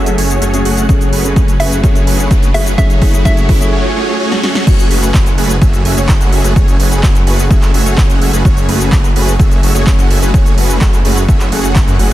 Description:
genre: EDM, festival progressive house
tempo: 127 BPM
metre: 4/4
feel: straight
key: F# minor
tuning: A4 = 440 Hz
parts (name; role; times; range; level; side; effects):
- hollow square pluck; melody; 0.0-3.7 s; E5; -22 LUFS; right 1 dB; chorus, digital delay
- lush unison pad; sustained chords; 0.0-12.1 s; A3 to G#4; -25 LUFS; left 2 dB; none
- supersaw chords; riff; 0.0-12.1 s; A3 to F#5; -17 LUFS; right 1 dB; analog chorus, sidechain pumping, low-pass filter, digital delay
- detuned saw bass; bass; 0.0-12.1 s; F#1 to F#2; -16 LUFS; equal; sidechain pumping
- riser; sound effects; 1.0-4.7 s; none; -24 LUFS; equal; none
- dark grand piano; accompaniment; 0.1-3.7 s; F#3 to A4; -21 LUFS; left 4 dB; sidechain pumping, digital delay
- big-room dance drum kit; drums; 0.1-12.1 s; crash cymbal, handclaps, hi-hat, shaker, snare drum; -20 LUFS; right 1 dB; overdrive
- electronic kick drum; drums; 0.9-11.9 s; none; -11 LUFS; equal; overdrive
room: little or no reverb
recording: dense, heavily limited modern master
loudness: -9 LUFS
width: side -14 dB against mid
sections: 0.0-4.7 A section; 4.7-12.1 B section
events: build-up 0.0-4.7; drum fill 0.9-3.7, 4.3-4.7; riser 1.0-4.7; break 3.7-4.7; drop 4.7-12.1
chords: 0.0 F#madd9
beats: 0.42 | 0.89 1.36 1.84 2.31 | 2.78 3.25 3.73 4.20 | 4.67 5.14 5.62 6.09 | 6.56 7.03 7.51 7.98 | 8.45 8.92 9.40 9.87 | 10.34 10.81 11.29 11.76

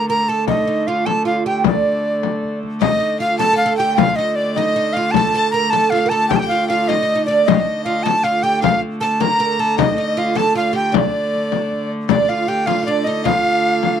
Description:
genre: medieval dance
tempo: 103 BPM (dotted quarters)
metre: 6/8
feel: straight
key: D phrygian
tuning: A4 = 440 Hz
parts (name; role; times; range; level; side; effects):
- breathy tenor recorder; melody; 0.0-14.0 s; D5 to Bb5; -18 LUFS; right 1 dB; none
- oud; second line; 0.0-14.0 s; D4 to Bb4; -22 LUFS; right 8 dB; none
- clear hurdy-gurdy; drone; 0.0-14.0 s; D3 to A3; -24 LUFS; equal; none
- frame drum; percussion; 0.5-14.0 s; none; -18 LUFS; left 16 dB; none
- clear fiddle; second line; 2.8-14.0 s; D5 to Bb5; -26 LUFS; left 6 dB; none
room: light reverb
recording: dry, close 1970s-style studio recording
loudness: -15 LUFS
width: side -8 dB against mid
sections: 0.0-2.8 A section; 2.8-12.1 A section; 12.1-14.0 B section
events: none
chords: none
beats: | 0.47 1.05 | 1.64 2.22 | 2.81 3.39 | 3.98 4.56 | 5.14 5.72 | 6.30 6.88 | 7.47 8.05 | 8.63 9.21 | 9.78 10.36 | 10.94 11.52 | 12.10 12.67 | 13.25 13.82

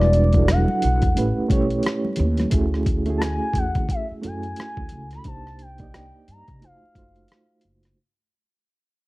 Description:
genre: R&B, neo-soul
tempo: 88 BPM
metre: 4/4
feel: swing 60% on 16ths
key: unclear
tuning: A4 = 439 Hz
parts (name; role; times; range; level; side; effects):
- gliding portamento lead; melody; 0.0-7.6 s; D5 to B5; -27 LUFS; left 1 dB; chorus, slapback echo
- reed electric piano; accompaniment; 0.0-8.0 s; F#3 to Eb5; -25 LUFS; right 2 dB; fast tremolo
- upright bass; bass; 0.0-7.9 s; E1 to D3; -22 LUFS; equal; none
- boom bap sampler-style drum kit; drums; 0.0-8.0 s; hi-hat, kick drum, rim click; -24 LUFS; equal; none
- congas; percussion; 0.1-2.5 s; none; -32 LUFS; left 2 dB; none
room: digital ambience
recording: dry, close 1970s-style studio recording, vinyl crackle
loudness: -19 LUFS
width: side -20 dB against mid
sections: 0.0-8.0 A section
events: fade-out 0.0-8.0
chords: 0.0 Em9; 1.2 A7; 2.5 Dmaj9#11; 5.2 Cm7; 6.6 F7b9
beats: 0.47 1.15 1.84 | 2.52 3.20 3.88 4.56 | 5.25 5.93 6.61 7.29

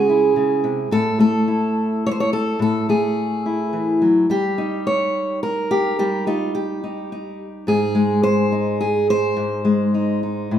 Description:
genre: folk, solo fingerstyle acoustic guitar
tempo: 107 BPM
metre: 3/4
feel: straight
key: unclear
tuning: A4 = 440 Hz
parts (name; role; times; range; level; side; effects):
- fingerpicked steel-string acoustic guitar; solo; 0.0-10.6 s; G#2 to C#5; -17 LUFS; equal; none
room: wet large studio reverb, RT60 1.1 s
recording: band playing live in one room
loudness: -17 LUFS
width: side -10 dB against mid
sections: 0.0-10.6 A section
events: none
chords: 0.0 C#m; 0.9 A5; 4.3 D#7/G; 7.7 G#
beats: 0.36 | 0.92 1.48 2.04 | 2.60 3.17 3.73 | 4.31 4.88 5.44 | 6.00 6.57 7.12 | 7.68 8.25 8.81 | 9.37 9.94 10.51

